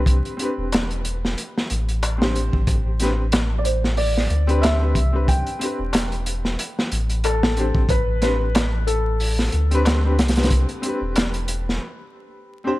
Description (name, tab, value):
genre	trip hop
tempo	92 BPM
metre	4/4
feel	swing 56% on 16ths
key	A minor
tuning	A4 = 439 Hz
part	warm upright piano	accompaniment	0.0-12.8 s	C4 to C5	-27 LUFS	left 1 dB	tremolo, low-pass filter, tape echo
part	warm sub bass	bass	0.0-11.8 s	E1 to D2	-21 LUFS	equal	tube saturation
part	crunchy breakbeat drum kit	drums	0.1-11.8 s	hi-hat, kick drum, snare drum	-22 LUFS	equal	none
part	darbuka	percussion	0.7-11.3 s	none	-32 LUFS	left 2 dB	none
part	felt-muted upright piano	melody	3.6-11.8 s	A4 to G5	-26 LUFS	left 1 dB	tape echo
room	studio ambience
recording	vinyl crackle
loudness	-18 LUFS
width	side -17 dB against mid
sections	0.0-12.8 A section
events	break 11.8-12.8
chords	0.0 Am11